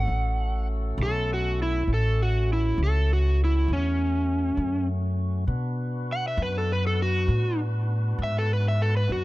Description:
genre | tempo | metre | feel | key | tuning
slow blues | 67 BPM (dotted quarters) | 12/8 | straight | F# minor | A4 = 440 Hz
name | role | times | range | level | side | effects
overdriven slide guitar | melody | 0.0-9.2 s | C#4 to F#5 | -28 LUFS | equal | none
tonewheel organ | sustained chords | 0.0-9.2 s | A3 to B4 | -37 LUFS | equal | slow rotary speaker
upright bass | bass | 0.0-9.2 s | A1 to B2 | -24 LUFS | equal | none
room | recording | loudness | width
little or no reverb | none | -23 LUFS | side -18 dB against mid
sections
0.0-9.2 A section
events
electric slide guitar solo 0.0-9.2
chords
0.0 F#m; 5.5 Bm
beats
0.09 0.98 | 1.89 2.79 3.69 4.59 | 5.49 6.39 7.29 8.18 | 9.08

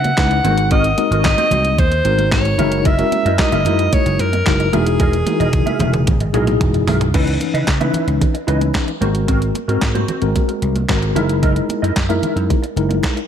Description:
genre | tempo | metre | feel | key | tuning
early-eighties boogie funk | 112 BPM | 4/4 | straight | C# dorian | A4 = 440 Hz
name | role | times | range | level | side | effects
bright alto saxophone | melody | 0.0-6.6 s | G#4 to F#5 | -19 LUFS | equal | analog delay
mellow tine electric piano | accompaniment | 0.0-13.2 s | E3 to B4 | -20 LUFS | left 2 dB | medium stereo tremolo
mellow electric guitar | riff | 0.0-13.2 s | B#3 to E5 | -25 LUFS | right 3 dB | analog chorus
vintage slap bass | bass | 0.0-13.0 s | E1 to C#3 | -19 LUFS | equal | none
crisp 8-bit digital drum machine | drums | 0.0-13.3 s | crash cymbal, handclaps, hi-hat, kick drum, snare drum, toms | -19 LUFS | equal | none
congas | percussion | 0.1-13.2 s | none | -27 LUFS | right 4 dB | none
room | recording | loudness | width
light reverb | none | -14 LUFS | side -8 dB against mid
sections
0.0-7.1 A section; 7.1-13.3 B section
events
drum fill 5.0-7.1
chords
0.4 G#9; 2.6 F#13; 4.7 Emaj9#11; 7.1 C#m9; 9.0 G#9; 11.2 F#13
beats
0.18 | 0.71 1.25 1.78 2.32 | 2.86 3.39 3.93 4.46 | 5.00 5.54 6.07 6.61 | 7.14 7.68 8.21 8.75 | 9.29 9.82 10.36 10.89 | 11.43 11.96 12.50 13.04

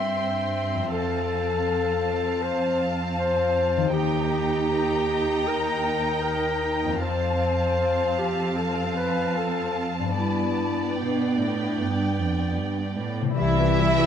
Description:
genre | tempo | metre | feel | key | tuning
cinematic | 73-80 BPM | 4/4 | rubato | unclear | A4 = 441 Hz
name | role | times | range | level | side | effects
dark symphonic violin section | melody | 0.0-14.1 s | E5 to C6 | -32 LUFS | left 2 dB | none
mellow clarinet | second line | 0.0-13.0 s | D4 to E5 | -26 LUFS | left 2 dB | none
rich symphonic violin section | second line | 0.0-14.1 s | E4 to G5 | -32 LUFS | equal | none
rich symphonic viola section | accompaniment | 0.0-14.1 s | E3 to G4 | -32 LUFS | right 3 dB | none
concert harp | arpeggios | 0.0-14.1 s | F2 to Bb4 | -31 LUFS | left 10 dB | none
rich symphonic cello section | bass | 0.0-14.1 s | Eb2 to E3 | -29 LUFS | right 3 dB | none
dark cor anglais | second line | 13.4-14.1 s | E4 | -29 LUFS | right 1 dB | none
mellow hollow silver concert flute | second line | 13.4-14.1 s | E5 | -28 LUFS | right 2 dB | none
warm French horn section | sustained chords | 13.4-14.1 s | G3 to E4 | -29 LUFS | left 4 dB | none
warm symphonic double bass section | bass | 13.4-14.1 s | C2 | -26 LUFS | right 3 dB | none
room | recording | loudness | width
moderate scoring stage reverb, RT60 1.8 s | none | -22 LUFS | side -8 dB against mid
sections
0.0-13.4 A section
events
none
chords
0.0 C/G; 0.9 F; 3.9 Eb; 7.0 F; 10.2 G; 13.4 C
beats
0.17 | 0.92 1.68 2.43 3.19 | 3.94 4.71 5.48 6.25 | 7.02 7.79 8.57 9.36 | 10.17 10.98 11.79 12.59 | 13.39

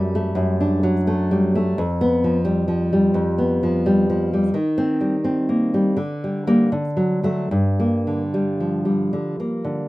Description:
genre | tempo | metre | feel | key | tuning
romantic piece for solo classical guitar | 72-88 BPM | 4/4 | rubato | G minor | A4 = 440 Hz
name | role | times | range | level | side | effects
nylon-string guitar | solo | 0.0-9.9 s | F2 to D4 | -18 LUFS | equal | none
room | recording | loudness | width
light reverb | recorded outdoors, with no room sound | -18 LUFS | side -18 dB against mid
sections
0.0-9.9 A section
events
none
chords
0.0 D/F#; 1.8 G7/F; 4.6 Cm/Eb; 6.0 Gm/D; 6.7 D; 7.5 Gm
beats
0.36 1.06 | 1.76 2.46 3.17 3.87 | 4.56 5.25 5.97 6.71 | 7.50 8.31 9.12

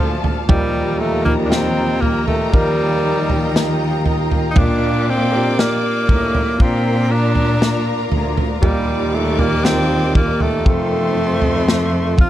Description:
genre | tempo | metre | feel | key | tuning
pop ballad | 59 BPM | 4/4 | straight | Bb major | A4 = 440 Hz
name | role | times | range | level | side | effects
bright alto saxophone | melody | 0.0-12.3 s | F3 to F4 | -20 LUFS | equal | none
warm symphonic violin section | second line | 0.0-12.3 s | A4 to D6 | -27 LUFS | left 2 dB | none
warm concert grand piano | accompaniment | 0.0-12.3 s | Bb2 to Bb4 | -23 LUFS | right 1 dB | none
granular cloud pad | sustained chords | 0.0-12.3 s | Eb4 to C6 | -27 LUFS | right 1 dB | built-in reverb
warm studio cello section | bass | 0.0-12.3 s | D2 to Bb2 | -21 LUFS | left 1 dB | none
natural country drum kit | drums | 0.2-12.3 s | kick drum, snare drum, toms | -17 LUFS | equal | none
room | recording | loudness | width
studio ambience | dark, warm production | -14 LUFS | side -13 dB against mid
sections
0.0-12.3 A section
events
none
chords
0.0 Bb; 0.5 Ebadd9; 4.6 Bb; 8.6 Ebadd9; 10.7 F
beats
| 0.50 1.52 2.53 3.55 | 4.57 5.58 6.60 7.62 | 8.64 9.65 10.67 11.69

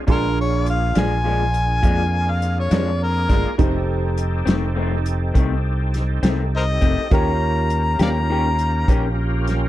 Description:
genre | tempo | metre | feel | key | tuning
slow blues | 68 BPM (dotted quarters) | 12/8 | straight | Bb mixolydian | A4 = 440 Hz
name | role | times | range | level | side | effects
warm grand piano | accompaniment | 0.0-9.7 s | D4 to C6 | -29 LUFS | right 6 dB | plate reverb
overdriven tonewheel organ | sustained chords | 0.0-9.7 s | Bb3 to Bb4 | -29 LUFS | right 1 dB | slow rotary speaker, chorus vibrato
warm harmonica | melody | 0.1-9.2 s | Bb4 to Bb5 | -24 LUFS | left 2 dB | overdrive
electric guitar through a small old amp | accompaniment | 0.1-9.1 s | F2 to G4 | -26 LUFS | left 4 dB | harmonic tremolo
fingered electric bass | bass | 0.1-9.7 s | F1 to F2 | -21 LUFS | equal | none
warm soul drum kit | drums | 0.1-9.6 s | hi-hat, kick drum, snare drum | -20 LUFS | equal | none
room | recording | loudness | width
light reverb | dark, warm production | -17 LUFS | side -14 dB against mid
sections
0.0-9.7 A section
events
harmonica solo 0.0-9.7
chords
0.0 Bb7; 3.6 F7; 7.1 Eb7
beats
| 0.08 0.96 1.83 2.71 | 3.59 4.47 5.35 6.24 | 7.12 8.00 8.88

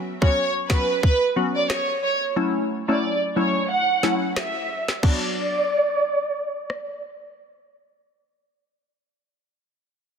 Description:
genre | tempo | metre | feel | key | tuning
dancehall | 90 BPM | 4/4 | swing 56% on 16ths | B minor | A4 = 439 Hz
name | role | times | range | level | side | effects
glassy wavetable pluck | accompaniment | 0.0-8.3 s | F#3 to F#4 | -25 LUFS | left 2 dB | chorus, sidechain pumping, low-pass filter
warm studio violin section | melody | 0.2-7.0 s | B4 to F#5 | -23 LUFS | right 2 dB | low-pass filter
island pop drum kit | drums | 0.2-6.9 s | crash cymbal, kick drum, rim click, snare drum | -23 LUFS | equal | none
room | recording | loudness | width
light reverb | dense, heavily limited modern master | -20 LUFS | side -6 dB against mid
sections
0.0-5.0 A section; 5.0-7.7 B section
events
none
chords
0.0 Bsus2; 2.4 F#m7; 5.0 Bm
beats
0.36 1.03 1.70 | 2.37 3.03 3.70 4.37 | 5.03 5.70 6.37 7.03

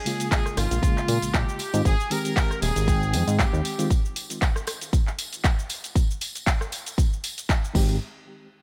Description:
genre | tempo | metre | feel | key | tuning
nu-disco, nu disco | 117 BPM | 4/4 | swing 55% on 16ths | Ab major | A4 = 440 Hz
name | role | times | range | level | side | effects
clear trumpet section | melody | 0.0-3.9 s | F4 to Bb4 | -33 LUFS | equal | digital delay
reed electric piano | accompaniment | 0.0-3.9, 7.7-8.0 s | Db3 to G5 | -32 LUFS | equal | fast tremolo, digital delay
house drum kit | drums | 0.1-7.9 s | crash cymbal, handclaps, hi-hat, rim click, shaker | -32 LUFS | equal | small room ambience
tambourine | percussion | 0.1-8.0 s | none | -40 LUFS | equal | none
electronic kick drum | drums | 0.3-7.9 s | none | -25 LUFS | equal | small room ambience
fat analog bass | bass | 0.6-3.6, 7.7-8.0 s | Eb1 to Bb2 | -27 LUFS | equal | none
room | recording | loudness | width
little or no reverb | none | -24 LUFS | mono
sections
0.0-8.0 A section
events
none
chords
0.0 Bbm7; 1.6 Abmaj7; 3.9 N.C.; 7.8 Abmaj7; 8.0 N.C.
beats
0.32 0.83 1.34 | 1.85 2.37 2.88 3.39 | 3.90 4.42 4.93 5.44 | 5.96 6.47 6.98 7.49

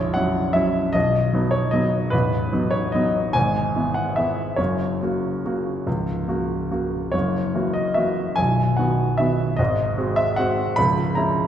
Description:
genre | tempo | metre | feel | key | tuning
classical, piano waltz | 136-159 BPM | 3/4 | rubato | B major | A4 = 440 Hz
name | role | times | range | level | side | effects
clear baby grand piano | solo | 0.0-11.5 s | A0 to B5 | -19 LUFS | equal | none
room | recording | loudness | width
wet concert hall reverb, RT60 2.2 s | heard from further back in the room | -19 LUFS | side -10 dB against mid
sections
0.0-11.5 A section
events
none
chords
0.0 F#7/A#; 0.9 B; 2.1 B7/A; 3.4 E/G#; 4.6 F#; 7.1 F#7; 8.4 B; 9.6 G#7; 10.8 C#m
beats
0.15 0.55 | 0.95 1.34 1.73 | 2.13 2.52 2.93 | 3.35 3.75 4.17 | 4.58 5.01 5.45 | 5.86 6.28 6.71 | 7.14 7.55 7.98 | 8.39 8.79 9.20 | 9.59 9.98 10.38 | 10.77 11.17

